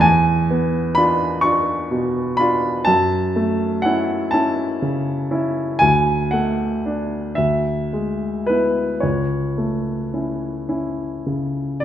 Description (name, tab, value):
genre	classical, romantic nocturne for solo piano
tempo	35-43 BPM (dotted quarters)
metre	12/8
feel	rubato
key	A major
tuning	A4 = 441 Hz
part	warm baby grand piano	solo	0.0-11.8 s	C#2 to C#6	-17 LUFS	equal	none
room	moderate recital hall reverb, RT60 1.4 s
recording	none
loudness	-18 LUFS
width	side -10 dB against mid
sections	0.0-11.8 A section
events	none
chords	0.0 E7b9; 2.9 F#m7; 5.8 D; 7.4 E7/D; 9.0 A/C#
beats	| 0.04 1.45 2.88 4.34 | 5.83 7.39 9.04 10.70